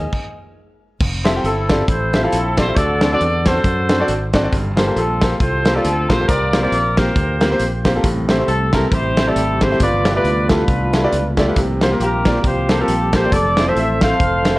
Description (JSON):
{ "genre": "uptempo gospel", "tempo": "136 BPM", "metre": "4/4", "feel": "swing 57% on 8ths", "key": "F major", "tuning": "A4 = 440 Hz", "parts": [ { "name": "clear concert grand piano", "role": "accompaniment", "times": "0.0-14.6 s", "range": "G2 to Ab5", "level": "-21 LUFS", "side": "equal", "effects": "none" }, { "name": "mellow tonewheel organ", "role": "sustained chords", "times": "0.0-0.1, 8.0-14.6 s", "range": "C3 to A4", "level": "-24 LUFS", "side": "right 2 dB", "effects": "slow rotary speaker" }, { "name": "modern bright fingered electric bass", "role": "bass", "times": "0.0-14.6 s", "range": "F1 to F#2", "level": "-21 LUFS", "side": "equal", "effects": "none" }, { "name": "modern studio drum kit", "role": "drums", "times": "0.1-14.5 s", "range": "crash cymbal, hi-hat, kick drum, snare drum", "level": "-19 LUFS", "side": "equal", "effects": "none" }, { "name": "mellow horn section", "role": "melody", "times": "1.4-14.6 s", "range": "C4 to F5", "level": "-19 LUFS", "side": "equal", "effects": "none" } ], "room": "light reverb, small room ambience", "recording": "worn, warbling old tape, cassette tape, warbly pitch drift", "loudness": "-14 LUFS", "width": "side -19 dB against mid", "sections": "0.0-1.0 A section; 1.0-14.6 B section", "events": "stop 0.1-1.0", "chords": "0.1 N.C.; 1.0 Fmaj9; 2.8 D7; 4.5 Gm11; 6.3 C7sus4; 8.0 Am7; 9.8 G13; 11.6 C7sus4; 13.3 Fmaj7", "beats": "0.12 0.56 | 1.01 1.45 1.89 2.33 | 2.77 3.21 3.65 4.09 | 4.53 4.96 5.41 5.84 | 6.29 6.72 7.17 7.61 | 8.04 8.48 8.93 9.37 | 9.80 10.25 10.69 11.13 | 11.57 12.01 12.45 12.89 | 13.32 13.77 14.21" }